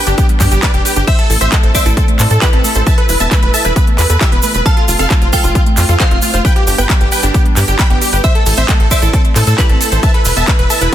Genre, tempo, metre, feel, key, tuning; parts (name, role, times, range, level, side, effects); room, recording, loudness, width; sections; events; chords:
uplifting trance; 134 BPM; 4/4; straight; A minor; A4 = 438 Hz
supersaw stab; melody; 0.0-10.9 s; F4 to B5; -17 LUFS; equal; sidechain pumping, tape echo
plucky unison lead; second line; 0.0-10.9 s; F5 to B6; -24 LUFS; equal; sidechain pumping, tape echo
muted studio string section; sustained chords; 0.0-10.9 s; E3 to B4; -25 LUFS; left 1 dB; sidechain pumping
wide unison pluck; arpeggios; 0.0-10.9 s; G3 to C5; -22 LUFS; right 6 dB; sidechain pumping, tape echo
tight sequencer bass; bass; 0.1-10.9 s; E1 to A2; -14 LUFS; equal; sidechain pumping
techno drum kit; drums; 0.1-10.9 s; crash cymbal, handclaps, hi-hat, ride cymbal; -19 LUFS; equal; overdrive
tube shaker; percussion; 0.1-10.9 s; -22 LUFS; right 3 dB
electronic kick drum; drums; 0.2-10.9 s; -12 LUFS; equal; overdrive
glassy synth bell; second line; 1.1-10.4 s; B4 to A5; -23 LUFS; equal; chorus, tremolo, tape echo
little or no reverb; dense, heavily limited modern master; -9 LUFS; side -11 dB against mid
0.0-10.9 A section
0.0 G; 1.1 Am; 2.9 Esus4; 4.7 F; 6.4 G; 8.2 Am; 10.0 Esus4